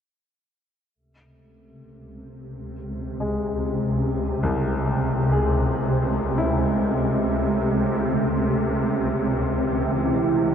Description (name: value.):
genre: ambient.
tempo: free time.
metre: none.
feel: none.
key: unclear.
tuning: A4 = 440 Hz.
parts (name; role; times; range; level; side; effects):
metallic inharmonic drone; texture; 1.7-10.5 s; A3; -34 LUFS; right 1 dB; chorus, built-in reverb, shimmer reverb.
swarming drone; drone; 2.5-10.5 s; C#2 to C3; -22 LUFS; equal; built-in reverb, phaser.
clear baby grand piano; arpeggios; 3.2-10.5 s; C2 to G#4; -29 LUFS; left 2 dB; ping-pong delay.
deep dark ambient pad; sustained chords; 9.8-10.5 s; E4; -24 LUFS; right 5 dB; chorus, built-in reverb.
room: wet huge ambient reverb, RT60 8.7 s.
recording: dark, warm production.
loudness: -20 LUFS.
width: side -8 dB against mid.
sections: 0.9-10.5 A section.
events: fade-in on synth drone 0.9-10.5; fade-out on grand piano 0.9-10.5.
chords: 0.9 Am.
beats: free time.